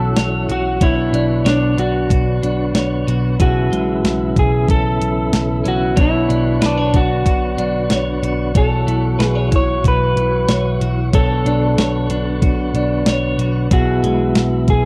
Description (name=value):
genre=dream pop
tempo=93 BPM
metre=4/4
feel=straight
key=B dorian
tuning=A4 = 440 Hz
part: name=electric slide guitar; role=melody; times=0.0-14.9 s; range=D4 to C#5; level=-23 LUFS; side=equal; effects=slapback echo
part: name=tonewheel organ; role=sustained chords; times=0.0-14.9 s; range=B2 to C#5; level=-27 LUFS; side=equal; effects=fast rotary speaker
part: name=clean electric guitar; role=arpeggios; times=0.0-14.9 s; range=B2 to C#5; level=-23 LUFS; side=equal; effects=lush chorus, slapback echo
part: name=vintage muted picked electric bass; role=bass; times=0.0-14.9 s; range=B1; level=-23 LUFS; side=equal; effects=none
part: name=crisp 8-bit digital drum machine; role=drums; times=0.2-14.8 s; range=hi-hat, kick drum, snare drum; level=-19 LUFS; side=equal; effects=overdrive
room=light reverb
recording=dark, warm production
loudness=-17 LUFS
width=mono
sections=0.0-14.9 A section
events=none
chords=0.0 F#m7/B; 0.8 Bmadd9; 3.4 Amaj9/B; 6.0 Bmadd9; 8.6 F#m7/B; 11.1 Bm9; 13.7 Amaj9/B (rootless)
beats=0.17 | 0.81 1.46 2.10 2.75 | 3.39 4.04 4.68 5.33 | 5.97 6.62 7.26 7.91 | 8.55 9.20 9.84 10.49 | 11.13 11.78 12.43 13.07 | 13.71 14.36